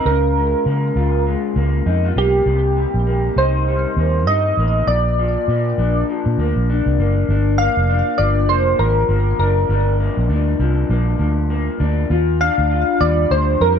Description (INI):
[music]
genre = indie pop, bedroom pop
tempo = 100 BPM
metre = 4/4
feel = swing 60% on 16ths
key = unclear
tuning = A4 = 445 Hz
[part]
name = soft electric-piano-like synth keys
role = melody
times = 0.0-13.8 s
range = G4 to F5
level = -19 LUFS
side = right 1 dB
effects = analog chorus, plate reverb, ping-pong delay
[part]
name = electric guitar through a small old amp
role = accompaniment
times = 0.0-13.8 s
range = G2 to F4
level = -22 LUFS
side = left 5 dB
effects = lush chorus, warbly pitch drift
[part]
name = vintage muted fingered electric bass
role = bass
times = 0.1-13.8 s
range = F1 to Db3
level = -18 LUFS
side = equal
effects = none
[sound]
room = light reverb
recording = dark, warm production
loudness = -15 LUFS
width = side -7 dB against mid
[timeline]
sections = 0.0-7.3 A section; 7.3-13.8 B section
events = none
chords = 0.1 Db6; 2.5 Cm7; 4.9 Bb; 7.3 Gm7; 12.1 Ebmaj9